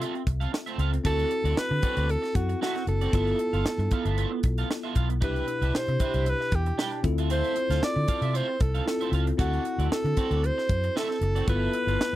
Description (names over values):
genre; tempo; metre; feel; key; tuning
polished 1980s jazz-funk pop; 115 BPM; 4/4; swing 54% on 16ths; unclear; A4 = 440 Hz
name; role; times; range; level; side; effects
breathy alto saxophone; melody; 0.0-12.2 s; F4 to D5; -29 LUFS; right 1 dB; slapback echo
bell-like tine electric piano; accompaniment; 0.0-12.2 s; B2 to E5; -33 LUFS; left 4 dB; wide subtle chorus
electric guitar at the edge of break-up; riff; 0.0-12.0 s; B3 to G5; -34 LUFS; right 7 dB; analog chorus
vintage muted fingered electric bass; bass; 0.0-12.2 s; F#1 to D3; -26 LUFS; equal; none
crisp fusion drum kit; drums; 0.0-12.1 s; hi-hat, kick drum, snare drum; -28 LUFS; equal; none
room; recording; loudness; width
little or no reverb; dry, close 1970s-style studio recording; -24 LUFS; side -14 dB against mid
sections
0.0-12.2 A section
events
none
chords
0.0 Dm9 (rootless); 1.0 D7; 3.1 G13; 5.2 Cmaj9; 7.0 Dm9; 9.4 D7; 11.5 G13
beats
0.00 0.52 | 1.04 1.57 2.09 2.61 | 3.13 3.65 4.17 4.69 | 5.21 5.74 6.26 6.78 | 7.30 7.82 8.35 8.87 | 9.39 9.91 10.43 10.95 | 11.47 11.99